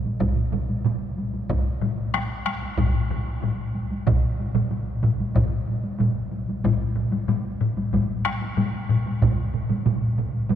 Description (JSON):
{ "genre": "japanese traditional, taiko drum ensemble", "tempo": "93 BPM", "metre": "4/4", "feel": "straight", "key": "none", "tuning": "none", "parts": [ { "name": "taiko ensemble", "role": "percussion", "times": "0.1-10.6 s", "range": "none", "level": "-30 LUFS", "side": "equal", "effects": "none" }, { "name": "taiko ensemble", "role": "percussion", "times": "0.2-10.6 s", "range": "none", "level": "-26 LUFS", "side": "right 4 dB", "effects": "none" }, { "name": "taiko ensemble", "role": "percussion", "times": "0.2-9.4 s", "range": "none", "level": "-28 LUFS", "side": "equal", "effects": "none" }, { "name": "taiko ensemble", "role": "percussion", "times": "1.8-9.0 s", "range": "none", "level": "-26 LUFS", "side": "left 4 dB", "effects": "none" } ], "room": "wet cathedral reverb, RT60 5.7 s", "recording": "recorded in a church or concert hall", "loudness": "-22 LUFS", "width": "side -10 dB against mid", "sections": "0.0-6.6 A section; 6.6-10.6 B section", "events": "none", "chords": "none", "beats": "0.20 0.85 | 1.50 2.14 2.79 3.43 | 4.08 4.72 5.36 6.00 | 6.65 7.29 7.93 8.57 | 9.21 9.86 10.50" }